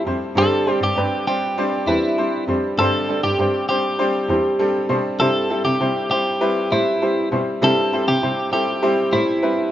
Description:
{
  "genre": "piano-driven pop",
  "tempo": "99 BPM",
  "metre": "4/4",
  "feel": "straight",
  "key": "unclear",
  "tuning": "A4 = 443 Hz",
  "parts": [
    { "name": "twelve-string electric guitar", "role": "melody", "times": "0.0-9.7 s", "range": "E4 to A4", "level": "-21 LUFS", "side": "equal", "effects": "none" },
    { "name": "bright upright piano", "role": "accompaniment", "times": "0.0-9.7 s", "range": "G2 to C5", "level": "-20 LUFS", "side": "equal", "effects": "none" },
    { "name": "warm cello", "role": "bass", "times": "0.1-9.2 s", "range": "E2 to C3", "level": "-24 LUFS", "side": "equal", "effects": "none" }
  ],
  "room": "light reverb, small room ambience",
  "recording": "rough home demo mix, nothing above 7.5 kHz",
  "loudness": "-17 LUFS",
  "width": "side -12 dB against mid",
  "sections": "0.0-9.7 A section",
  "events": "none",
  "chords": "0.4 Gsus4; 5.2 C"
}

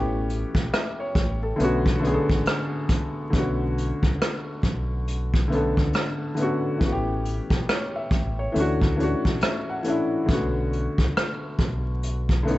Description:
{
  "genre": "lo-fi hip hop",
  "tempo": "69 BPM",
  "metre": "4/4",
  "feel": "swing 61% on 16ths",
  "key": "B minor",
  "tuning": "A4 = 440 Hz",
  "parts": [
    { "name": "felt-muted upright piano", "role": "accompaniment", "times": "0.0-12.6 s", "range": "D3 to F#5", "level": "-26 LUFS", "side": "left 1 dB", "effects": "cassette tape" },
    { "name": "deep dub fingered electric bass", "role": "bass", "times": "0.0-12.6 s", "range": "A1 to D2", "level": "-27 LUFS", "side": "equal", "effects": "none" },
    { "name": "vintage brush drum kit", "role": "drums", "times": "0.3-12.6 s", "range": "hi-hat, kick drum, rim click", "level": "-24 LUFS", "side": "equal", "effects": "vintage 12-bit sampler grit" }
  ],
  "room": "light reverb, studio reverb",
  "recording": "vinyl crackle, nothing above 7.9 kHz",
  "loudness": "-22 LUFS",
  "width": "side -17 dB against mid",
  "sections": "0.0-3.3 A section; 3.3-12.6 B section",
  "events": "felt piano fill 9.0-10.3",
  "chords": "0.0 A9; 1.6 Bm9; 6.8 A9; 8.5 Dmaj9; 10.3 Bm9"
}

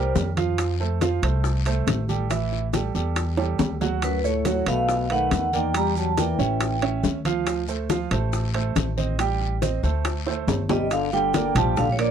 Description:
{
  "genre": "Afro-Cuban jazz",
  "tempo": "140 BPM",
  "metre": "4/4",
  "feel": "straight",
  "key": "D minor",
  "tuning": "A4 = 442 Hz",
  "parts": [
    { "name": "vibraphone with medium hard mallets", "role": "melody", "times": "0.0-0.1, 4.0-7.0, 10.7-12.1 s", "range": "B4 to Bb5", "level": "-25 LUFS", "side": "right 4 dB", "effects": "none" },
    { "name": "breathy trombone", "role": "second line", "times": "0.0-0.1, 4.0-7.0, 10.7-12.1 s", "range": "F#2 to G3", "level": "-28 LUFS", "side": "left 17 dB", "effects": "none" },
    { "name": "warm baby grand piano", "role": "accompaniment", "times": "0.0-12.1 s", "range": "E3 to G5", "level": "-28 LUFS", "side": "right 11 dB", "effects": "none" },
    { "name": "upright bass", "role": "bass", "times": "0.0-12.1 s", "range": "G1 to F2", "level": "-26 LUFS", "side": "equal", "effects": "none" },
    { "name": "bongos", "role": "percussion", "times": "0.2-12.1 s", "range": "none", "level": "-30 LUFS", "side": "left 15 dB", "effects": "none" },
    { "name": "congas", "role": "percussion", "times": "0.2-12.1 s", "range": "none", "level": "-31 LUFS", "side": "left 2 dB", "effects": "none" },
    { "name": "guiro", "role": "percussion", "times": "0.2-12.1 s", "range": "none", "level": "-39 LUFS", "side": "left 24 dB", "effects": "none" },
    { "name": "maracas", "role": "percussion", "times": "0.2-12.1 s", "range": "none", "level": "-42 LUFS", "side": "right 26 dB", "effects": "none" },
    { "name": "timbales", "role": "percussion", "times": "0.2-12.1 s", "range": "none", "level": "-28 LUFS", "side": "right 6 dB", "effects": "none" }
  ],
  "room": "little or no reverb",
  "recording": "dry, close 1970s-style studio recording",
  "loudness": "-21 LUFS",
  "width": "side -8 dB against mid",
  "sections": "0.0-10.9 A section; 10.9-12.1 B section",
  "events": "drum fill 3.4-4.0, 10.3-10.9",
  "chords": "0.0 C5; 0.6 Fadd9; 2.3 A5; 4.0 Dmaj7; 4.9 B7; 5.7 Em7b5; 6.6 A7b13; 7.5 Dm7; 9.2 Am7b5; 10.1 D5; 10.9 Gm"
}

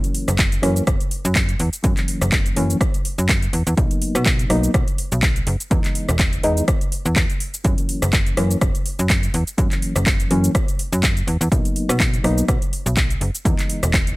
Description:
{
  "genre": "filtered disco house",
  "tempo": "124 BPM",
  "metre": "4/4",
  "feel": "swing 55% on 16ths",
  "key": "F# mixolydian",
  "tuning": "A4 = 438 Hz",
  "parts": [
    { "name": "reed electric piano", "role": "accompaniment", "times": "0.0-14.2 s", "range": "E3 to D#4", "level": "-24 LUFS", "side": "left 1 dB", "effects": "overdrive, fast tremolo, phaser, sidechain pumping" },
    { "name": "house drum kit", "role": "drums", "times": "0.0-14.2 s", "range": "handclaps, hi-hat, rim click, shaker", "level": "-23 LUFS", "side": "equal", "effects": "overdrive, sidechain pumping on hats, sidechain pumping on perc" },
    { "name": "slap-like FM bass", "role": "bass", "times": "0.3-14.1 s", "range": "E1 to B2", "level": "-21 LUFS", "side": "equal", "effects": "sidechain pumping" },
    { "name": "electronic kick drum", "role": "drums", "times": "0.4-14.0 s", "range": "none", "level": "-20 LUFS", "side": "equal", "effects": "overdrive" }
  ],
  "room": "little or no reverb",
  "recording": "none",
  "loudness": "-17 LUFS",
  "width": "side -21 dB against mid",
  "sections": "0.0-14.2 A section",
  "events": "none",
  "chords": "0.0 F#7; 3.8 Bmaj7; 5.7 Emaj7; 7.6 F#7; 11.5 Bmaj7; 13.5 Emaj7"
}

